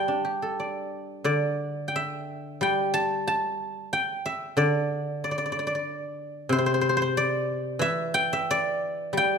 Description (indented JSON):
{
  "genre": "chinese traditional, Chinese solo plucked strings",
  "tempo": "91 BPM",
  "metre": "4/4",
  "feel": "rubato",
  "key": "G zhi mode",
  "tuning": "A4 = 440 Hz",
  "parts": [
    { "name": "guzheng", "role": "solo", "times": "0.0-9.4 s", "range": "C3 to A5", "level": "-24 LUFS", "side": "equal", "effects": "none" }
  ],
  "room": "moderate recital hall reverb, RT60 1.6 s",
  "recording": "minimal, uncompressed stereo recording",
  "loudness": "-24 LUFS",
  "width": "side -6 dB against mid",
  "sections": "0.0-9.4 A section",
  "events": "none",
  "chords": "none",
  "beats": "0.58 | 1.27 1.95 2.62 3.28 | 3.93 4.58 5.22 5.87 | 6.51 7.16 7.82 8.48 | 9.16"
}